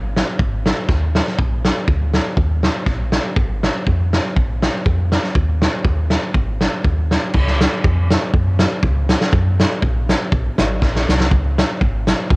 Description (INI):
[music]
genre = alpine folk, alpine dance band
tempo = 121 BPM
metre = 2/4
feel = swing 53% on 8ths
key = Db major from 7.4 s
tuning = A4 = 439 Hz
[part]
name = woody FM bass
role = bass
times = 0.0-12.4 s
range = Ab1 to Gb2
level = -18 LUFS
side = equal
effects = none
[part]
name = loose indie drum kit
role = drums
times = 0.2-12.4 s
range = crash cymbal, hi-hat, kick drum, snare drum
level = -16 LUFS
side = equal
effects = cassette tape
[sound]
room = light reverb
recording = home recording on cassette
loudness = -15 LUFS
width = side -27 dB against mid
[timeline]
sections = 0.0-7.4 A section; 7.4-12.4 B section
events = drum fill 10.8-11.3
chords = none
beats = | 0.40 0.90 | 1.39 1.89 | 2.38 2.87 | 3.37 3.87 | 4.37 4.87 | 5.36 5.86 | 6.35 6.85 | 7.35 7.85 | 8.34 8.84 | 9.33 9.83 | 10.32 10.82 | 11.31 11.81 | 12.31